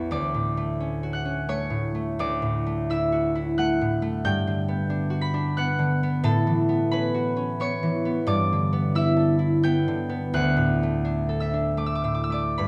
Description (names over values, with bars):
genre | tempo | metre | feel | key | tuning
classical, solo harp piece | 88 BPM | 3/4 | rubato | unclear | A4 = 440 Hz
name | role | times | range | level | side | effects
concert harp | solo | 0.0-12.7 s | A1 to B6 | -24 LUFS | equal | none
room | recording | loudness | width
wet recital hall reverb, RT60 1.7 s | none | -25 LUFS | mono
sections
0.0-12.7 A section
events
none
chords
0.1 Dmaj7; 2.2 Dadd9; 4.2 Gmaj7; 6.2 A69; 8.3 G69; 10.4 D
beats
| 0.12 0.81 1.50 | 2.19 2.89 3.56 | 4.23 4.90 5.57 | 6.24 6.92 7.60 | 8.29 8.96 9.65 | 10.36 11.06 11.78 | 12.56